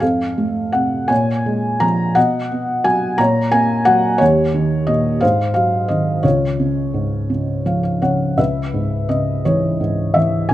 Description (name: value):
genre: classical, lyrical solo piano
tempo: 57 BPM (dotted quarters)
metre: 6/8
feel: uneven beats, rubato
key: Db major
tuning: A4 = 441 Hz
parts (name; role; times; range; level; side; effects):
- felt-muted upright piano; solo; 0.0-10.5 s; Db2 to Bb5; -15 LUFS; equal; none
room: light reverb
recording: close, detailed microphones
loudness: -15 LUFS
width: side -14 dB against mid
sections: 0.0-8.4 A section; 8.4-10.5 B section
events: felt piano fill 7.3-8.4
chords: 0.0 F; 1.1 Bbm7; 2.2 Cb; 3.2 Gb/Bb; 4.2 Eb7; 5.2 Ab7; 6.2 Db; 8.4 C#m7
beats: | 0.02 1.11 | 2.17 3.19 | 4.21 5.22 | 6.25 7.31 | 8.39 9.46 | 10.51